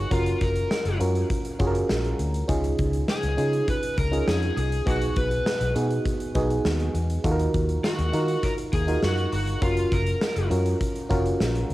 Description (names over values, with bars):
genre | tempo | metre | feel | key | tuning
1980s-style pop | 101 BPM | 4/4 | straight | unclear | A4 = 440 Hz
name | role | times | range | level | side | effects
lead guitar through a small cranked amp | melody | 0.0-10.5 s | F4 to Cb5 | -29 LUFS | left 1 dB | overdrive, cassette tape, analog delay, plate reverb
FM electric piano | accompaniment | 0.0-11.7 s | Cb3 to Db5 | -27 LUFS | right 2 dB | chorus, cassette tape, plate reverb
vintage muted fingered electric bass | bass | 0.0-11.7 s | Gb1 to Eb3 | -26 LUFS | equal | none
big rock drum kit | drums | 0.1-11.7 s | hi-hat, kick drum, snare drum | -28 LUFS | equal | none
room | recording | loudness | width
light reverb | home recording on cassette | -22 LUFS | side -16 dB against mid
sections
0.0-11.7 A section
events
none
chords
0.1 Gbmaj7; 2.5 Dbadd9; 4.9 Abm7/Cb; 7.2 Ebmadd9; 9.6 Gbmaj7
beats
| 0.11 0.71 1.30 1.90 | 2.49 3.08 3.68 4.27 | 4.87 5.46 6.05 6.65 | 7.24 7.84 8.43 9.03 | 9.62 10.21 10.81 11.40